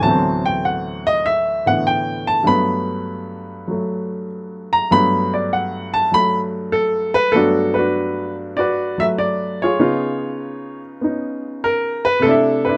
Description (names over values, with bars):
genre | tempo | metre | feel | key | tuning
solo jazz | 98 BPM | 4/4 | swing 69% on 8ths | G major | A4 = 440 Hz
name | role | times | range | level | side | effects
warm upright piano | solo | 0.0-12.8 s | D2 to B5 | -19 LUFS | equal | none
room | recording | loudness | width
light reverb | close, detailed microphones | -19 LUFS | mono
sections
0.0-7.4 A section; 7.4-12.8 B section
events
upright piano solo 0.0-7.4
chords
0.0 D13; 2.5 Gmaj9; 9.8 C#9; 12.2 C69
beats
| 0.02 0.63 1.24 1.85 | 2.46 3.07 3.68 4.29 | 4.91 5.52 6.13 6.74 | 7.35 7.96 8.57 9.19 | 9.80 10.41 11.02 11.63 | 12.24